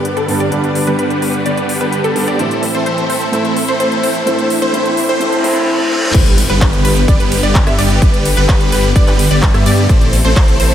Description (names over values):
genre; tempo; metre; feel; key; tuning
EDM, festival progressive house; 128 BPM; 4/4; straight; G major; A4 = 443 Hz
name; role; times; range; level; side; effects
dark grand piano; accompaniment; 0.0-6.2 s; G2 to E4; -19 LUFS; right 1 dB; sidechain pumping, diffuse ambient delay
rich studio string section; sustained chords; 0.0-10.7 s; C3 to E5; -24 LUFS; left 2 dB; sidechain pumping
wide unison pluck; arpeggios; 0.0-10.7 s; A4 to E5; -20 LUFS; equal; sidechain pumping, diffuse ambient delay
supersaw chords; riff; 0.0-10.7 s; D3 to E5; -17 LUFS; equal; phaser, cassette tape, sidechain pumping, low-pass filter, diffuse ambient delay
riser, reverse cymbal and impact; sound effects; 3.3-8.0 s; none; -24 LUFS; equal; none
big-room dance drum kit; drums; 0.1-10.7 s; crash cymbal, handclaps, hi-hat, ride cymbal, rim click; -22 LUFS; equal; overdrive
detuned saw bass; bass; 6.1-10.7 s; G1 to G2; -16 LUFS; equal; sidechain pumping
electronic kick drum; drums; 6.1-10.5 s; none; -12 LUFS; equal; overdrive
room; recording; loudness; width
wet lush hall reverb, RT60 2.1 s; dreamy mix soaked in reverb, high-pass filter; -11 LUFS; side -10 dB against mid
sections
0.0-6.1 A section; 6.1-10.7 B section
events
build-up 0.0-6.1; filter sweep on supersaw synth 0.0-6.1; filter sweep on synth pluck 0.0-6.1; reverse cymbal 5.2-6.1; drop 6.1-10.7; impact 6.1-8.0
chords
0.0 G; 2.4 Am; 4.3 Dsus2/A; 6.1 G; 9.9 Am